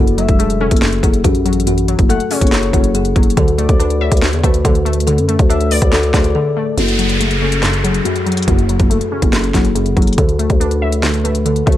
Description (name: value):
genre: hip hop, trap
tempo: 141 BPM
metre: 4/4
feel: half-time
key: F# minor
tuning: A4 = 440 Hz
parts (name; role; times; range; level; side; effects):
- kalimba; melody; 0.0-11.8 s; F#4 to C#5; -20 LUFS; left 3 dB; low-pass filter, tape echo
- glassy wavetable pluck; accompaniment; 0.0-11.8 s; F#2 to E5; -20 LUFS; equal; chorus, low-pass filter, tape echo
- growling 808-style bass; bass; 0.0-11.8 s; E1 to F#2; -16 LUFS; equal; none
- trap drum kit; drums; 0.1-11.8 s; handclaps, hi-hat, kick drum, snare drum; -15 LUFS; equal; none
- gliding portamento lead; second line; 0.2-6.7 s; C#5 to F#5; -26 LUFS; left 6 dB; chorus, tape echo
- downlifter; sound effects; 6.8-10.2 s; none; -23 LUFS; equal; none
room: little or no reverb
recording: echo-heavy mix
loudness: -12 LUFS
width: side -13 dB against mid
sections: 0.0-6.8 A section; 6.8-11.8 B section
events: break 6.3-6.8; filter sweep 6.8-11.8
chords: 0.0 F#m; 3.4 Dsus2; 6.8 F#m; 10.2 Dsus2